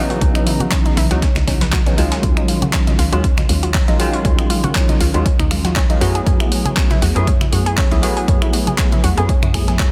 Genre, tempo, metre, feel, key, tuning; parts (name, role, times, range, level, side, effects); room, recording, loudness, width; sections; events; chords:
deep house; 119 BPM; 4/4; swing 55% on 16ths; Eb phrygian; A4 = 436 Hz
barky tine electric piano; stabs; 0.0-9.9 s; Db3 to Ab4; -23 LUFS; equal; phaser, sidechain pumping, delay
analog pluck; arpeggios; 0.1-9.9 s; Db4 to Cb5; -28 LUFS; equal; chorus, sidechain pumping, dub echo
dusty soul sampler-style drum kit; drums; 0.1-9.9 s; hi-hat, snare drum; -34 LUFS; equal
hollow knocking FM bass; bass; 0.2-9.9 s; Bb1 to Gb2; -22 LUFS; equal; sidechain pumping
deep house drum kit; drums; 0.2-9.9 s; finger snaps, handclaps, hi-hat; -26 LUFS; equal; studio reverb, soft clipping on snare
electronic kick drum; drums; 0.2-9.9 s; -19 LUFS; equal; studio reverb
bongos and congas; percussion; 0.5-9.8 s; -27 LUFS; equal
little or no reverb; dense, heavily limited modern master; -16 LUFS; mono
0.0-9.9 A section
0.0 Dbm11; 2.2 Ebm11; 6.0 Gbm11